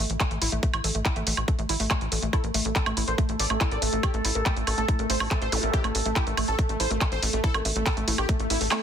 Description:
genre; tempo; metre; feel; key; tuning
psychedelic trance; 141 BPM; 4/4; straight; unclear; A4 = 440 Hz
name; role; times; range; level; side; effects
woody wave-folded pluck; riff; 0.0-8.8 s; A3 to Bb4; -34 LUFS; moving between left 3 dB and right 7 dB; chorus, auto-pan, sidechain pumping, digital delay
tight sequencer bass; bass; 0.0-8.7 s; A1; -29 LUFS; equal; none
drum and bass drum kit; drums; 0.1-8.8 s; handclaps, hi-hat, snare drum, woodblock; -28 LUFS; right 2 dB; small room ambience
electronic kick drum; drums; 0.2-8.4 s; none; -25 LUFS; equal; small room ambience
wide unison lead; melody; 2.3-8.8 s; A3 to D5; -30 LUFS; equal; phaser, sidechain pumping, digital delay
overtone-sweeping drone; sustained chords; 2.7-8.8 s; A4; -34 LUFS; equal; chorus, built-in reverb, sidechain pumping
zap and swell; sound effects; 5.5-5.6, 8.4-8.8 s; none; -36 LUFS; left 1 dB; none
room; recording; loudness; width
light reverb, digital ambience; dense, heavily limited modern master; -23 LUFS; side -8 dB against mid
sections
0.0-8.8 A section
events
swell 8.4-8.8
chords
0.0 A5

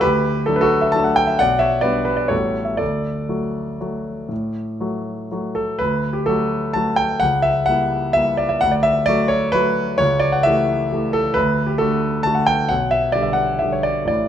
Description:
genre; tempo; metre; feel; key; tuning
classical, piano waltz; 116-140 BPM; 3/4; rubato; D major; A4 = 441 Hz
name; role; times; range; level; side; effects
warm concert grand piano; solo; 0.0-14.3 s; A1 to A5; -17 LUFS; equal; none
room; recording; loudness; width
moderate recital hall reverb, RT60 1.7 s; close, detailed microphones; -17 LUFS; side -9 dB against mid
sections
0.0-5.8 A section; 5.8-14.3 B section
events
none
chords
0.0 D; 1.4 G/B; 2.3 A13; 2.8 D; 7.2 C#dim7; 8.6 D; 10.0 A7/C#; 11.4 D; 12.7 G/B

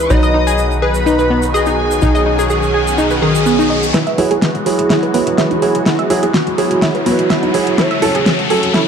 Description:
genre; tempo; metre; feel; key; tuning
progressive house; 125 BPM; 4/4; straight; E major; A4 = 438 Hz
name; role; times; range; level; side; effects
plucky unison lead; melody; 0.0-8.9 s; F#4 to D#5; -19 LUFS; right 1 dB; dub echo
rich studio violin section; second line; 0.0-3.9 s; G#5 to D#6; -24 LUFS; left 1 dB; ping-pong delay
filtered supersaw swell; sustained chords; 0.0-8.9 s; B2 to A4; -22 LUFS; equal; phaser
warm grand piano; stabs; 0.0-8.9 s; F#3 to B4; -19 LUFS; right 4 dB; low-pass filter, ping-pong delay
plucky analog bass; bass; 0.0-8.7 s; E1 to B1; -20 LUFS; equal; high-pass filter
analog pluck; arpeggios; 0.1-8.8 s; D#3 to E5; -18 LUFS; equal; chorus, cassette tape, ping-pong delay
egg shaker; percussion; 0.1-3.9 s; none; -30 LUFS; right 6 dB; none
riser; sound effects; 1.5-8.9 s; none; -24 LUFS; left 2 dB; none
pop drum kit; drums; 3.9-8.8 s; hi-hat, snare drum; -18 LUFS; equal; small room ambience
room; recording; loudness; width
moderate lush hall reverb, RT60 1.6 s; dark, warm production; -12 LUFS; side -7 dB against mid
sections
0.0-3.9 A section; 3.9-8.9 B section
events
filter sweep on synth pluck 0.0-3.9, 3.9-8.9; riser 1.5-3.9, 3.9-8.9; build-up 3.9-8.9; drum fill 3.9-8.9; filter sweep on grand piano 3.9-8.9; filter sweep on digital synth lead 3.9-8.9; filter sweep 3.9-8.9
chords
0.1 B; 3.9 Eadd9; 7.8 F#m

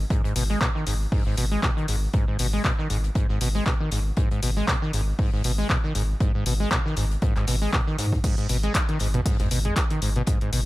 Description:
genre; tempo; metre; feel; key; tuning
acid house; 118 BPM; 4/4; swing 55% on 16ths; G# minor pentatonic; A4 = 440 Hz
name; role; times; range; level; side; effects
saturated sub bass; bass; 0.0-10.7 s; G#1 to G#2; -25 LUFS; equal; sidechain pumping
overdriven acid bass; riff; 0.1-10.6 s; G#2 to G#3; -27 LUFS; equal; tube saturation, analog chorus, sidechain pumping, tape echo
electronic kick drum; drums; 0.1-10.4 s; none; -24 LUFS; equal; overdrive
open jazz drum kit; drums; 0.1-10.7 s; hi-hat, snare drum; -41 LUFS; left 4 dB; none
punchy analog drum machine; drums; 0.4-10.6 s; crash cymbal, handclaps, hi-hat, toms; -29 LUFS; left 1 dB; none
room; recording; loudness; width
digital ambience; none; -21 LUFS; side -18 dB against mid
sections
0.0-10.7 A section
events
none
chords
0.0 G#m

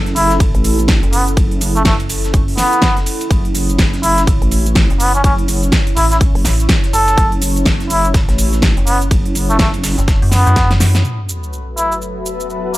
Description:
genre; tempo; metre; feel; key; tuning
bass house; 124 BPM; 4/4; swing 60% on 16ths; F# minor; A4 = 440 Hz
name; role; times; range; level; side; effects
dark analog pad; sustained chords; 0.0-12.8 s; F#3 to C#5; -25 LUFS; right 3 dB; chorus, sidechain pumping
vowel-sweep wobble bass; bass; 0.0-10.0 s; F#1 to A1; -17 LUFS; equal; chorus, overdrive, sidechain pumping
big-room dance drum kit; drums; 0.1-12.8 s; hi-hat, shaker, snare drum; -19 LUFS; right 1 dB; none
breakbeat sampler-style drum kit; drums; 0.1-10.8 s; ride cymbal, snare drum; -29 LUFS; right 1 dB; sidechain pumping on cymbals, high-pass filter on cymbals, high-pass filter on snare
trumpet with cup mute; melody; 0.2-12.8 s; A3 to A4; -18 LUFS; equal; dub echo
metallic FM bass; bass; 0.4-11.0 s; F#1 to F#2; -16 LUFS; equal; overdrive, sidechain pumping
electronic kick drum; drums; 0.4-10.7 s; none; -15 LUFS; equal; none
sub drop; sound effects; 11.0-12.8 s; none; -26 LUFS; equal; none
granular cloud pad; texture; 11.5-12.8 s; F#4 to A5; -24 LUFS; left 3 dB; built-in reverb, sidechain pumping
room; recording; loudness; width
digital ambience; none; -11 LUFS; side -17 dB against mid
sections
0.0-11.0 A section; 11.0-12.8 B section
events
drop 0.0-11.0; drum fill 10.6-11.0; impact 11.0-12.8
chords
0.0 F#m

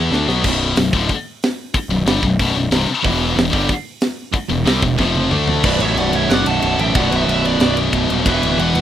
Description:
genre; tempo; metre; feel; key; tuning
heavy metal; 184 BPM; 4/4; straight; B minor; A4 = 440 Hz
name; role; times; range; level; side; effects
heavy high-gain guitar; riff; 0.0-8.8 s; B1 to E4; -19 LUFS; left 6 dB; distortion
high-gain distorted guitar; riff; 0.0-0.4, 3.0-8.8 s; B1 to E4; -24 LUFS; right 14 dB; distortion
fuzz picked electric bass; bass; 0.0-8.8 s; B0 to D2; -20 LUFS; equal; overdrive
tight metal drum kit; drums; 0.1-8.8 s; crash cymbal, hi-hat, kick drum, ride cymbal, snare drum, toms; -21 LUFS; right 1 dB; none
tight distorted guitar; riff; 0.4-8.8 s; B1 to D4; -27 LUFS; right 3 dB; none
high-gain lead guitar; second line; 5.6-8.8 s; B4 to F#5; -25 LUFS; right 7 dB; distortion
high-gain lead guitar; melody; 5.7-8.8 s; D5 to A5; -22 LUFS; right 4 dB; distortion, tape echo
room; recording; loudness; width
little or no reverb; rough home demo mix; -14 LUFS; side -11 dB against mid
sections
0.4-5.6 A section; 5.6-8.8 B section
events
drum fill 0.0-0.4, 5.0-5.6; half time 5.6-8.8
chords
0.1 Bm7; 0.4 Bm; 3.0 E5; 5.0 F5; 5.3 D5; 5.6 Bm; 8.2 E5

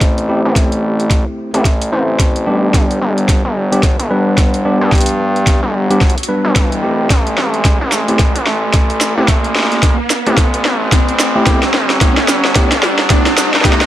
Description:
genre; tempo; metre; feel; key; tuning
glitch hop; 110 BPM; 4/4; swing 60% on 16ths; unclear; A4 = 440 Hz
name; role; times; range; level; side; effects
tine electric piano; stabs; 0.0-13.8 s; G3 to C5; -17 LUFS; equal; sidechain pumping, digital delay
gritty driven synth bass; bass; 0.0-13.9 s; E1 to G2; -17 LUFS; equal; high-pass filter
drum and bass drum kit; drums; 0.0-13.9 s; hi-hat, shaker, snare drum; -16 LUFS; equal; high-pass filter on hats, high-pass filter on toms, high-pass filter on snare, high-pass filter on perc
electronic kick drum; drums; 0.0-13.8 s; none; -13 LUFS; equal; none
riser; sound effects; 1.4-13.9 s; none; -21 LUFS; right 1 dB; none
room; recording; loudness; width
light reverb; none; -11 LUFS; side -13 dB against mid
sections
0.0-13.9 A section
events
build-up 0.0-13.9; drum fill 0.0-13.9; riser 1.4-13.9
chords
0.0 Am7; 2.7 G; 7.1 N.C.; 11.5 G

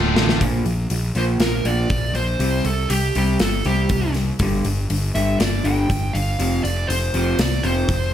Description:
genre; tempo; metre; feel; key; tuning
quiet-loud alternative rock; 120 BPM; 4/4; straight; unclear; A4 = 440 Hz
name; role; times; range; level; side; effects
fuzz picked electric bass; bass; 0.0-8.1 s; D1 to C2; -22 LUFS; equal; overdrive
big rock drum kit; drums; 0.2-8.0 s; hi-hat, kick drum, snare drum; -24 LUFS; left 1 dB; none
electric guitar through a small old amp; arpeggios; 0.4-8.1 s; F2 to C4; -24 LUFS; left 1 dB; none
dark smooth lead guitar; melody; 1.2-8.1 s; G4 to G5; -25 LUFS; right 2 dB; overdrive
room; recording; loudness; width
light reverb, small room reverb; none; -18 LUFS; side -10 dB against mid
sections
0.4-8.1 A section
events
drum fill 0.0-0.4; half time 0.4-8.1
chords
0.4 Bb; 2.4 C5; 4.4 G5; 6.4 F5

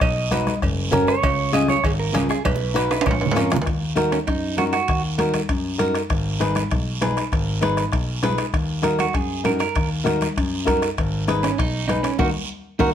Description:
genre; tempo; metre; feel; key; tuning
latin, cumbia; 197 BPM; 4/4; straight; Eb minor; A4 = 440 Hz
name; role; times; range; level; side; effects
clean electric guitar; second line; 0.0-5.0, 9.0-12.9 s; Bb3 to D#5; -24 LUFS; right 6 dB; none
dark concert grand piano; bass; 0.0-12.9 s; Gb1 to Ab2; -25 LUFS; left 1 dB; none
bombo; percussion; 0.0-12.9 s; none; -26 LUFS; left 2 dB; none
cowbell and timbales; percussion; 0.0-12.9 s; none; -29 LUFS; right 5 dB; none
guiro; percussion; 0.0-12.9 s; none; -34 LUFS; right 6 dB; none
flamenco guitar; accompaniment; 0.3-12.9 s; Db4 to B4; -22 LUFS; left 1 dB; none
congas; percussion; 0.3-12.9 s; none; -29 LUFS; equal; none
room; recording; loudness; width
light reverb; none; -19 LUFS; side -9 dB against mid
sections
0.0-3.7 A section; 3.7-12.9 B section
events
clean electric guitar solo 0.0-3.7, 3.7-12.9; drum fill 2.4-3.7; band accent 12.2-12.9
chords
0.0 B; 0.6 Gb; 1.2 Db; 2.4 B; 3.1 Bbm; 3.7 Ebm; 6.1 Abm; 8.5 Ebm; 11.0 Abm; 12.2 Ebm

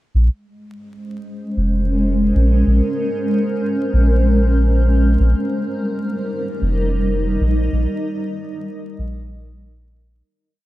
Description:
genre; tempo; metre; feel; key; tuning
ambient dub; 95 BPM; 4/4; straight; Bb dorian; A4 = 439 Hz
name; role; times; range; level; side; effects
granular cloud pad; sustained chords; 1.0-10.3 s; G3 to Eb5; -20 LUFS; equal; built-in reverb
soft dub sub bass; bass; 0.1-10.2 s; F1 to Bb1; -16 LUFS; equal; none
room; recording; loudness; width
light reverb; dark, warm production, vinyl crackle; -16 LUFS; side -16 dB against mid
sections
0.1-10.3 groove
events
fade-out 6.9-10.3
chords
0.1 Bbm9; 5.2 Eb

